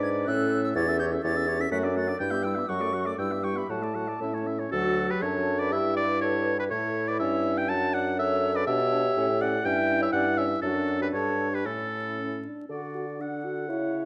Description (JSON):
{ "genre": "quick classical-period movement for wind quintet", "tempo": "122 BPM", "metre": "2/4", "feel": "rubato", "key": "D major", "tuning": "A4 = 440 Hz", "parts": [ { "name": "silver concert flute", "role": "melody", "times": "0.0-14.1 s", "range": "E4 to B6", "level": "-36 LUFS", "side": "equal", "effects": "none" }, { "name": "clear oboe", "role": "second line", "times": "0.0-14.1 s", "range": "A4 to A5", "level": "-32 LUFS", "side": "equal", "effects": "none" }, { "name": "mellow French horn", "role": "accompaniment", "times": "0.0-14.1 s", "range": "F#3 to B4", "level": "-34 LUFS", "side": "equal", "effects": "none" }, { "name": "warm clarinet", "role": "accompaniment", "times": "0.0-14.1 s", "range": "F#3 to C#5", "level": "-38 LUFS", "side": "equal", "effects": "none" }, { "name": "dark bassoon", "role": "bass", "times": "0.0-14.1 s", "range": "D2 to D3", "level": "-32 LUFS", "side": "equal", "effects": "none" } ], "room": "moderate recital hall reverb, RT60 1.4 s", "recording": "dark, warm production, vinyl crackle", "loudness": "-27 LUFS", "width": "mono", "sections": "0.0-4.7 A section; 4.7-12.7 B section; 12.7-14.1 C section", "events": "none", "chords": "0.3 A; 0.8 A7/E; 1.7 D/F#; 2.2 Em/G; 2.7 D/F#; 3.2 Em/G; 3.7 D/A; 4.2 A; 4.7 D; 5.2 D/F#; 5.7 Em/G; 6.7 A; 7.2 C#dim/G; 7.7 D/F#; 8.7 G/B; 9.2 A; 9.7 Em13/G; 10.6 D/F#; 11.1 Gadd9; 11.7 A; 12.7 D", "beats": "0.28 | 0.76 1.24 | 1.72 2.20 | 2.69 3.19 | 3.70 4.21 | 4.72 5.22 | 5.72 6.21 | 6.71 7.20 | 7.69 8.18 | 8.67 9.16 | 9.65 10.13 | 10.62 11.13 | 11.65 12.18 | 12.70 13.20 | 13.70" }